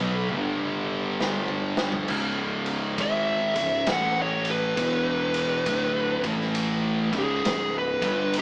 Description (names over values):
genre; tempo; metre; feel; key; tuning
stoner and doom metal; 67 BPM; 4/4; swing 64% on 8ths; unclear; A4 = 440 Hz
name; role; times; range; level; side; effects
fuzz guitar; riff; 0.0-8.4 s; C#2 to B3; -31 LUFS; equal; distortion
thick fuzz guitar; riff; 0.0-8.4 s; C#2 to B3; -34 LUFS; left 1 dB; distortion
thick fuzz guitar; riff; 0.0-8.4 s; C#2 to B3; -31 LUFS; right 1 dB; distortion
fuzz picked electric bass; bass; 0.0-8.4 s; C#1 to B1; -31 LUFS; equal; overdrive
raw garage drum kit; drums; 0.3-8.4 s; crash cymbal, kick drum, ride cymbal, snare drum, toms; -31 LUFS; equal; none
fuzz lead guitar; melody; 3.0-8.4 s; G#4 to F#5; -25 LUFS; equal; distortion
room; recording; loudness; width
light reverb; band playing live in one room, small speaker sound; -23 LUFS; side -31 dB against mid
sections
0.0-2.1 A section; 2.1-8.4 B section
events
drum fill 0.3-2.1; lead electric guitar solo 2.1-8.4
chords
0.3 G5; 2.1 C#m; 3.9 A5; 4.8 E5; 5.7 Bm7/D; 6.1 A5; 7.0 C#5; 7.9 G5